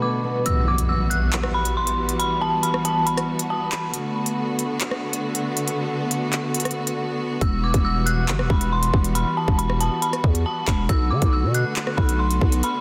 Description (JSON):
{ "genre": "hip hop, drill", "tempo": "138 BPM", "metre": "4/4", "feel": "half-time", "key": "E minor", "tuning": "A4 = 439 Hz", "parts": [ { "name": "dark detuned synth bell", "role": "melody", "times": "0.0-3.9, 7.4-12.8 s", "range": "A5 to F#6", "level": "-28 LUFS", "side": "equal", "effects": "chorus, phaser, delay" }, { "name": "concert harp", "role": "accompaniment", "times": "0.0-3.3 s", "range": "B2 to B3", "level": "-33 LUFS", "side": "equal", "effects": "none" }, { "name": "clear symphonic string section", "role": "sustained chords", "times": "0.0-12.8 s", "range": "D3 to F#4", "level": "-29 LUFS", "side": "equal", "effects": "none" }, { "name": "drill drum kit", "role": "drums", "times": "0.5-12.7 s", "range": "handclaps, hi-hat, kick drum, rim click", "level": "-26 LUFS", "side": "equal", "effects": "none" }, { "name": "impact", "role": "sound effects", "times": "0.5-2.2 s", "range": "none", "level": "-27 LUFS", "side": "equal", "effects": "none" }, { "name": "growling 808-style bass", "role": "bass", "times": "7.4-12.6 s", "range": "E1 to D3", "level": "-24 LUFS", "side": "equal", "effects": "none" } ], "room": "light reverb, digital ambience", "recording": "dense, heavily limited modern master", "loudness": "-22 LUFS", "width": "mono", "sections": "0.5-12.8 A section", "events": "kick muted 0.5-7.4; impact 0.5-2.2; break 3.9-7.4, 12.6; drums muted 7.0-7.4", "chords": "0.5 Emadd9; 3.9 Bm7; 7.4 Emadd9; 10.9 Bm7" }